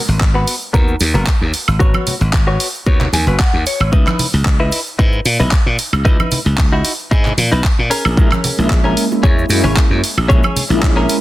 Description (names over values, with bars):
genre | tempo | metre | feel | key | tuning
nu-disco, nu disco | 113 BPM | 4/4 | swing 54% on 16ths | G# minor | A4 = 440 Hz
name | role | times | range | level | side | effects
glassy slap bass | bass | 0.1-11.1 s | F#1 to A#2 | -16 LUFS | equal | none
cabasa, congas and bongos | percussion | 0.1-11.2 s | none | -24 LUFS | right 2 dB | none
electronic kick drum | drums | 0.2-10.9 s | none | -14 LUFS | equal | none
pop drum kit | drums | 0.2-11.2 s | handclaps, hi-hat, woodblock | -20 LUFS | right 1 dB | none
direct-recorded clean electric guitar | riff | 0.3-11.2 s | B3 to G#5 | -21 LUFS | left 2 dB | lush chorus, low-pass filter, tape echo
mellow synth brass | accompaniment | 8.2-11.2 s | G#3 to E4 | -19 LUFS | right 1 dB | chorus, sidechain pumping, tape echo
room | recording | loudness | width
digital ambience | dense, heavily limited modern master | -12 LUFS | side -16 dB against mid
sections
0.0-11.2 A section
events
filter sweep on clean electric guitar 0.0-11.2; clean electric guitar fill 2.9-3.9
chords
0.0 G#m7; 3.9 C#m9; 7.9 A#m7b5